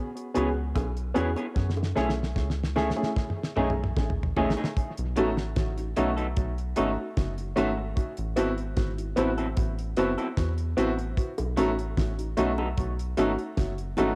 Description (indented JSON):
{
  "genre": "lovers rock reggae",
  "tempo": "75 BPM",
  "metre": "4/4",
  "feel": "straight",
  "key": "unclear",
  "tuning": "A4 = 439 Hz",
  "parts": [
    { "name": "damped 70s drum kit", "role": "drums", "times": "0.2-14.2 s", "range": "hi-hat, kick drum, rim click, snare drum, toms", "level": "-32 LUFS", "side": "equal", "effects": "cassette tape, analog delay" },
    { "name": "warm concert grand piano", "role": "accompaniment", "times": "0.3-14.1 s", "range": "A3 to G#4", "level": "-30 LUFS", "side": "equal", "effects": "cassette tape, analog delay" },
    { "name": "electric guitar through a small old amp", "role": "stabs", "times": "0.4-14.1 s", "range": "F#3 to C#5", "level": "-37 LUFS", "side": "equal", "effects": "cassette tape" },
    { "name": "rubbery square bass", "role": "bass", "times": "0.4-14.2 s", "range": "F#1 to F#2", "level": "-33 LUFS", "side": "equal", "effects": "none" },
    { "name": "bongos", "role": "percussion", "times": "0.4-4.8, 11.4-14.2 s", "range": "none", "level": "-40 LUFS", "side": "equal", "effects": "none" }
  ],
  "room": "moderate spring reverb, RT60 1.9 s, small room ambience",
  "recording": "home recording on cassette",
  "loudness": "-28 LUFS",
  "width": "mono",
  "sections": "0.0-4.8 A section; 4.8-14.2 B section",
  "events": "drum fill 1.6-4.8",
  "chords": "0.0 E6; 1.6 F#m7; 3.2 B13; 4.8 B7; 8.0 Am6; 11.2 B7"
}